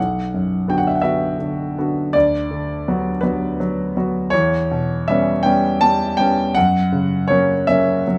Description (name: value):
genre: classical, romantic nocturne for solo piano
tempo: 54 BPM (dotted quarters)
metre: 12/8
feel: rubato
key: B minor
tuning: A4 = 441 Hz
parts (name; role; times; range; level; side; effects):
- clear grand piano; solo; 0.0-8.2 s; B1 to A5; -18 LUFS; equal; none
room: light reverb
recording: none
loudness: -19 LUFS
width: mono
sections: 0.0-8.2 A section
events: none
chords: 0.0 Bm; 2.2 Bm/D; 4.3 C#m7b5/E; 6.6 F#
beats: 1.05 2.15 3.24 | 4.32 5.44 6.55 7.68